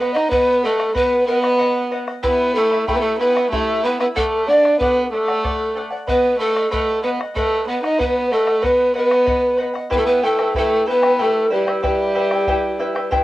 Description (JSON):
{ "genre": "andean folk, Andean ensemble", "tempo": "63 BPM (dotted quarters)", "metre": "6/8", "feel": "straight", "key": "unclear", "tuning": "A4 = 440 Hz", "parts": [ { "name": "breathy mellow polished pan flute", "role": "melody", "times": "0.0-13.1 s", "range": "G4 to D#5", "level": "-18 LUFS", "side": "equal", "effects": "cassette tape, plate reverb" }, { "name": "rich violin", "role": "second line", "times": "0.0-13.1 s", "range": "G3 to D#4", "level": "-21 LUFS", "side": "right 1 dB", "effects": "cassette tape, plate reverb" }, { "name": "charango", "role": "accompaniment", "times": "0.0-13.2 s", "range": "E4 to B5", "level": "-23 LUFS", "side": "left 1 dB", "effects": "cassette tape, plate reverb" }, { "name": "bombo", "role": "percussion", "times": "0.2-13.2 s", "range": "none", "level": "-28 LUFS", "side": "left 1 dB", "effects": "none" } ], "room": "wet booth ambience, RT60 0.2 s", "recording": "home recording on cassette", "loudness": "-15 LUFS", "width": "side -16 dB against mid", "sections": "0.0-13.2 A section", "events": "none", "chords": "0.0 B; 2.2 Em; 4.2 D; 6.1 B; 9.9 Em" }